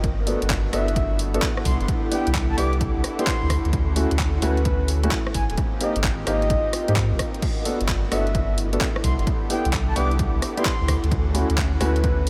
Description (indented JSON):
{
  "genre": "UK garage, two-step garage",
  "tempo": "130 BPM",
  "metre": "4/4",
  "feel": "swing 66% on 16ths",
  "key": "G major",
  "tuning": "A4 = 439 Hz",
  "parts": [
    { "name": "warm analog pad", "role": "sustained chords", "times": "0.0-12.3 s", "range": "A3 to G4", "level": "-35 LUFS", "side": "equal", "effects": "chorus, sidechain pumping" },
    { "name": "saturated sub bass", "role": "bass", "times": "0.0-12.3 s", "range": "Eb1 to Ab2", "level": "-25 LUFS", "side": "equal", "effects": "none" },
    { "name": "electronic kick drum", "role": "drums", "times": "0.0-12.2 s", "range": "none", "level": "-28 LUFS", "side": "equal", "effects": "small room ambience" },
    { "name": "garage drum kit", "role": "drums", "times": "0.0-12.3 s", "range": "crash cymbal, handclaps, hi-hat, rim click", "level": "-32 LUFS", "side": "equal", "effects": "overdrive, small room ambience" },
    { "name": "ethereal airy pad", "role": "texture", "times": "0.0-12.3 s", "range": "E4 to D6", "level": "-35 LUFS", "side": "equal", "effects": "ensemble chorus, built-in reverb, sidechain pumping" },
    { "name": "warm grand piano", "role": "stabs", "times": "0.3-11.9 s", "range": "A3 to A4", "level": "-31 LUFS", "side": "equal", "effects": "diffuse ambient delay" },
    { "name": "breathy flute-like synth lead", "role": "melody", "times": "0.7-12.3 s", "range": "B4 to D6", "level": "-33 LUFS", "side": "equal", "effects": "chorus, diffuse ambient delay" }
  ],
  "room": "light reverb",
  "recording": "none",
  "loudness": "-22 LUFS",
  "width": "mono",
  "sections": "0.0-12.3 A section",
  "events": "none",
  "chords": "0.0 Gmaj9; 1.7 Cmaj9; 3.5 Dmaj9; 5.3 Abmaj9; 7.4 Gmaj9; 9.0 Cmaj9; 10.9 Dmaj9"
}